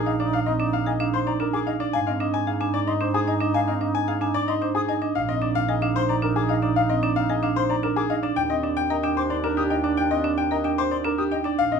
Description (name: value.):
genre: classical, minimalist pattern music.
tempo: 112 BPM.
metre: 3/4.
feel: straight.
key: unclear.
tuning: A4 = 440 Hz.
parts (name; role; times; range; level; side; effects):
clear baby grand piano; melody; 0.0-11.8 s; G4 to Ab5; -26 LUFS; left 9 dB; none.
bright alto flute; second line; 0.0-11.8 s; D4 to Eb4; -31 LUFS; right 2 dB; none.
rich double bass; bass; 0.0-11.8 s; Bb1 to Ab2; -29 LUFS; right 3 dB; none.
marimba with medium hard mallets; arpeggios; 0.1-11.8 s; C4 to Bb4; -26 LUFS; right 9 dB; none.
silver concert flute; arpeggios; 0.1-11.8 s; Eb5 to Eb6; -29 LUFS; left 5 dB; none.
room: moderate large studio reverb, RT60 1.1 s.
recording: minimal, uncompressed stereo recording.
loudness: -21 LUFS.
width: side -6 dB against mid.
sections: 0.0-11.8 A section.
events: none.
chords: 0.0 Bb9sus4; 1.9 Fm7/Ab; 5.2 Bb9sus4; 8.4 Ebmaj7.